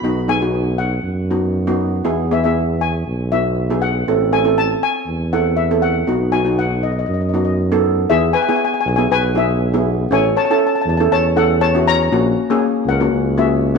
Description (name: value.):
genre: calypso.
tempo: 119 BPM.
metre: 4/4.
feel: straight.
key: E major.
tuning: A4 = 440 Hz.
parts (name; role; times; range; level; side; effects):
steel pan; melody; 0.0-13.8 s; G#4 to B5; -20 LUFS; left 7 dB; none.
steel pan; accompaniment; 0.0-13.8 s; A#3 to A4; -18 LUFS; right 2 dB; none.
mellow tuba; bass; 0.0-13.8 s; A1 to F#2; -19 LUFS; right 1 dB; none.
room: moderate echo chamber reverb, RT60 1.6 s, studio reverb.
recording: none.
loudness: -14 LUFS.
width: side -5 dB against mid.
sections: 0.0-8.1 A section; 8.1-13.8 B section.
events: none.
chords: 0.0 B; 2.1 E; 4.1 Am; 6.1 B; 8.1 E; 10.1 A; 12.1 F#7/A#.